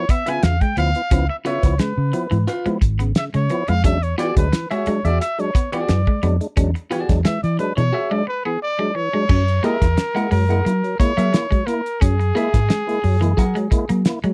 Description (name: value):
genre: funk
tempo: 88 BPM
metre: 4/4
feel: straight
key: unclear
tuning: A4 = 445 Hz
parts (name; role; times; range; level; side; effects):
- breathy trumpet; melody; 0.0-14.1 s; Ab4 to Ab5; -26 LUFS; equal; none
- tonewheel organ; stabs; 0.0-14.3 s; Db3 to E4; -28 LUFS; equal; overdrive, fast rotary speaker
- electric guitar at the edge of break-up; riff; 0.1-14.3 s; E3 to Db4; -28 LUFS; equal; none
- cloth-damped thuddy drum kit; drums; 0.1-14.3 s; crash cymbal, hi-hat, kick drum, snare drum; -20 LUFS; equal; none
- clean electric guitar; accompaniment; 0.3-13.6 s; F4 to Gb5; -28 LUFS; equal; none
- vintage muted fingered electric bass; bass; 0.4-14.3 s; Ab1 to Gb3; -21 LUFS; equal; none
room: little or no reverb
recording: dry, close 1970s-style studio recording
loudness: -19 LUFS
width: mono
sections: 0.0-9.3 A section; 9.3-14.3 B section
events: trumpet solo 0.0-9.3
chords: 0.0 Db7#9; 3.8 E9; 9.3 Gb9